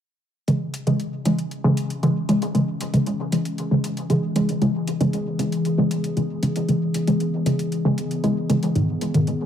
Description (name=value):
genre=dub techno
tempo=116 BPM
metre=4/4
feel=straight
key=C# minor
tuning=A4 = 440 Hz
part: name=warbly tape-like pad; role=sustained chords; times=0.5-9.5 s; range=D#3 to G#4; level=-26 LUFS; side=left 3 dB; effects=chorus, built-in reverb
part: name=filtered dub chord stab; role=stabs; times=0.5-9.3 s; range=G#2 to G#3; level=-21 LUFS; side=equal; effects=chorus, phaser, dub echo
part: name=electronic hi-hat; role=drums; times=0.5-9.4 s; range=none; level=-36 LUFS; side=left 1 dB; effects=overdrive, small room reverb
room=moderate echo chamber reverb, RT60 1.8 s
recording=none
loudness=-20 LUFS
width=side -9 dB against mid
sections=0.5-9.5 A section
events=filter sweep on ambient pad 0.5-9.5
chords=0.5 C#m; 8.8 G#m